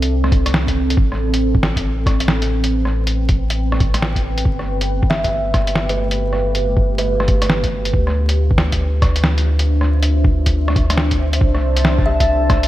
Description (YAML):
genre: future garage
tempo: 138 BPM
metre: 4/4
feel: swing 64% on 16ths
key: A minor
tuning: A4 = 440 Hz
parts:
  - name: deep dark ambient pad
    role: sustained chords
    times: 0.0-12.7 s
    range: A3 to G5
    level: -23 LUFS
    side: right 1 dB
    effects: chorus, built-in reverb, sidechain pumping
  - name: warm sub bass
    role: bass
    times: 0.0-12.7 s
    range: G1 to D2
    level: -18 LUFS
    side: equal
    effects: sidechain pumping
  - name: lo-fi sampler-style drum kit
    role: drums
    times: 0.0-12.7 s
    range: hi-hat, rim click, snare drum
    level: -21 LUFS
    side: equal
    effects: small room ambience, gated reverb
  - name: electronic kick drum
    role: drums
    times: 0.3-12.6 s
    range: none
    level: -17 LUFS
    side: equal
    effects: small room ambience
  - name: kalimba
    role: melody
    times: 5.1-7.4, 12.1-12.3 s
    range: B4 to E5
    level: -23 LUFS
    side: right 1 dB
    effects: vintage 12-bit sampler grit, digital delay
  - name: drifting glass-harmonics texture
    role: texture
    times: 11.5-12.7 s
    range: A3 to A4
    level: -30 LUFS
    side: equal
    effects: chorus, built-in reverb
room: light reverb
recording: bright 1980s-style digital production, vinyl crackle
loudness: -14 LUFS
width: side -15 dB against mid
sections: 0.0-11.4 A section; 11.4-12.7 B section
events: none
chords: 0.0 C69; 1.0 Am9; 4.5 G9; 7.9 Dm9; 11.4 C69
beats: 0.11 0.54 | 0.98 1.41 1.85 2.28 | 2.72 3.15 3.59 4.02 | 4.46 4.89 5.33 5.76 | 6.19 6.63 7.06 7.50 | 7.93 8.37 8.80 9.24 | 9.67 10.11 10.54 10.98 | 11.41 11.85 12.28